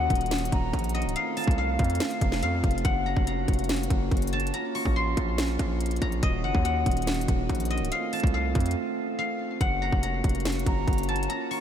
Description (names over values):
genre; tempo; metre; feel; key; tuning
hip hop, trap; 142 BPM; 4/4; half-time; unclear; A4 = 440 Hz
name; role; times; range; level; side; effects
guzheng; melody; 0.0-11.6 s; Eb5 to Db6; -31 LUFS; left 3 dB; low-pass filter, ping-pong delay
pipe organ, principal; sustained chords; 0.0-11.6 s; Eb3 to Gb4; -32 LUFS; right 1 dB; none
distorted 808-style bass; bass; 0.0-11.3 s; Db1 to F2; -29 LUFS; equal; distortion
trap drum kit; drums; 0.1-11.6 s; hi-hat, kick drum, snare drum; -28 LUFS; equal; none
silver concert flute; second line; 0.5-2.8, 9.6-11.6 s; F5 to Bb5; -37 LUFS; right 2 dB; ping-pong delay
room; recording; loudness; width
moderate huge ambient reverb, RT60 7.7 s; dreamy mix soaked in reverb; -24 LUFS; side -9 dB against mid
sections
0.0-2.8 A section; 2.8-11.6 A section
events
break 8.8-9.6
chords
0.0 Ebm7; 1.2 F; 2.8 Gb; 4.5 Bbm; 6.2 Ebm7; 7.9 F; 9.6 Gb